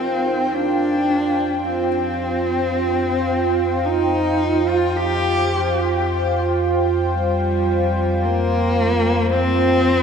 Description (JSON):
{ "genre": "ambient", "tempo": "free time", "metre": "none", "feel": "none", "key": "unclear", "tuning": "A4 = 441 Hz", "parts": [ { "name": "dark cello", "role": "melody", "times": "0.0-10.0 s", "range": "G3 to G4", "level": "-21 LUFS", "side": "left 1 dB", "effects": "ping-pong delay" }, { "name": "warm analog pad", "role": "sustained chords", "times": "0.0-10.0 s", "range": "Eb4 to G5", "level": "-20 LUFS", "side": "right 2 dB", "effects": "chorus" }, { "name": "felt-muted upright piano", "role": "arpeggios", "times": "0.0-10.0 s", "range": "F4", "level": "-36 LUFS", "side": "right 1 dB", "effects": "none" }, { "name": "warm sub bass", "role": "bass", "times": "0.0-10.0 s", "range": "F2", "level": "-25 LUFS", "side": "equal", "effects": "none" } ], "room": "wet cathedral reverb, RT60 5.3 s", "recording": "in a vast, echoing space", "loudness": "-17 LUFS", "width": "side -6 dB against mid", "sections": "0.0-10.0 A section", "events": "none", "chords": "0.0 Fsus2", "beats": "free time" }